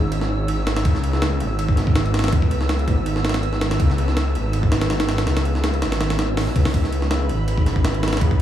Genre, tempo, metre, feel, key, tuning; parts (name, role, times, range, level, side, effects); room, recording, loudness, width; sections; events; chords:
drum and bass, jungle; 163 BPM; 4/4; swing 53% on 16ths; A4 = 439 Hz
ethereal airy pad; sustained chords; 0.0-8.4 s; B3 to C#5; -29 LUFS; equal; ensemble chorus, built-in reverb
detuned saw bass; bass; 0.0-8.4 s; G#1 to C#2; -21 LUFS; equal; tube saturation
wind-like tuned noise texture; texture; 0.0-8.4 s; B5 to E6; -33 LUFS; equal; built-in reverb
breakbeat sampler-style drum kit; drums; 0.1-8.4 s; hi-hat, kick drum, ride cymbal, snare drum; -21 LUFS; equal
swell; sound effects; 6.2-6.7 s; -34 LUFS; left 5 dB
little or no reverb; studio ambience; -18 LUFS; side -11 dB against mid
0.0-8.4 A section
swell 6.2-6.7
0.0 C#m; 0.9 Esus4; 6.7 C#m7